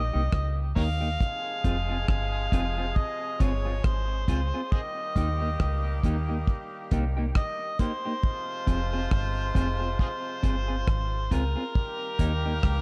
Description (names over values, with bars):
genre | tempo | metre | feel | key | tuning
roots reggae | 68 BPM | 4/4 | swing 57% on 16ths | F minor | A4 = 439 Hz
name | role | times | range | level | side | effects
overdriven harmonica | melody | 0.0-12.8 s | F4 to F5 | -35 LUFS | equal | tape echo
clear horn section | second line | 0.0-12.8 s | C3 to Ab4 | -41 LUFS | equal | tape echo
deep dub fingered electric bass | bass | 0.0-12.8 s | F1 to Eb2 | -30 LUFS | equal | none
semi-hollow electric guitar | accompaniment | 0.1-12.5 s | Bb3 to Ab4 | -37 LUFS | equal | spring reverb, tape echo
cloth-damped thuddy drum kit | drums | 0.3-12.8 s | hi-hat, kick drum, rim click | -28 LUFS | equal | none
room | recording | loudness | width
small room ambience | dark, warm production | -28 LUFS | mono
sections
0.0-12.8 A section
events
none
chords
0.0 Eb; 1.2 Fm; 4.7 Eb; 8.2 Fm; 11.8 Eb